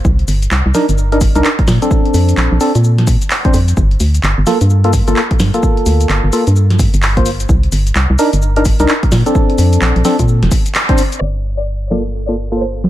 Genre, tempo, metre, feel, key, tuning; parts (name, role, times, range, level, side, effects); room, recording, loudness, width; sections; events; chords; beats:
UK garage, two-step garage; 129 BPM; 4/4; swing 62% on 16ths; G minor; A4 = 440 Hz
organ-like FM bass; bass; 0.0-12.9 s; F1 to Bb2; -13 LUFS; equal
electronic kick drum; drums; 0.0-11.0 s; -14 LUFS; equal
punchy analog drum machine; drums; 0.0-12.9 s; handclaps, hi-hat, shaker, snare drum; -19 LUFS; equal
percussive organ stab; stabs; 0.7-12.6 s; Bb3 to C5; -16 LUFS; equal; chorus, digital delay
rich studio violin section; melody; 11.2-12.8 s; C5 to D5; -24 LUFS; equal
light reverb; low-pass filter; -10 LUFS; side -14 dB against mid
0.0-11.2 A section; 11.2-12.9 B section
filter sweep on synth stab 0.0-11.2, 11.2-12.9; band accent 10.7; filter sweep 11.2-12.9
0.0 Cm9; 1.7 Bbmaj9; 3.8 Gm9; 7.5 Cm9; 9.1 Bbmaj9; 11.2 Gm9
| 0.05 0.51 0.98 1.44 | 1.91 2.37 2.84 3.30 | 3.77 4.23 4.70 5.17 | 5.63 6.09 6.56 7.03 | 7.49 7.96 8.42 8.88 | 9.35 9.82 10.28 10.75 | 11.21 11.68 12.14 12.61